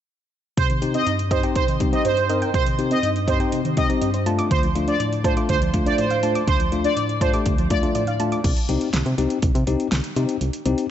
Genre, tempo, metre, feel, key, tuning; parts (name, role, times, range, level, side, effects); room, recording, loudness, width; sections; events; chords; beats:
synth-pop; 122 BPM; 4/4; straight; C dorian; A4 = 438 Hz
analog synth brass; second line; 0.6-7.8 s; C5 to Eb5; -24 LUFS; right 2 dB; chorus, tape echo
tine electric piano; accompaniment; 0.6-10.8 s; D2 to Bb4; -23 LUFS; left 3 dB
soft round pluck; arpeggios; 0.6-8.4 s; C3 to D6; -27 LUFS; right 4 dB; chorus, tape echo
pop drum kit; drums; 0.6-10.9 s; crash cymbal, hi-hat, kick drum, snare drum; -24 LUFS; equal
solid FM bass; bass; 8.4-10.7 s; C2 to C3; -23 LUFS; equal
moderate concert hall reverb, RT60 2.1 s; nothing above 7.9 kHz; -19 LUFS; side -10 dB against mid
0.6-8.4 A section; 8.4-10.9 B section
0.6 Cm; 4.3 Dm; 8.4 Cm
| 0.57 1.07 1.56 2.05 | 2.54 3.03 3.53 4.02 | 4.51 5.00 5.49 5.99 | 6.48 6.97 7.46 7.95 | 8.44 8.94 9.43 9.92 | 10.41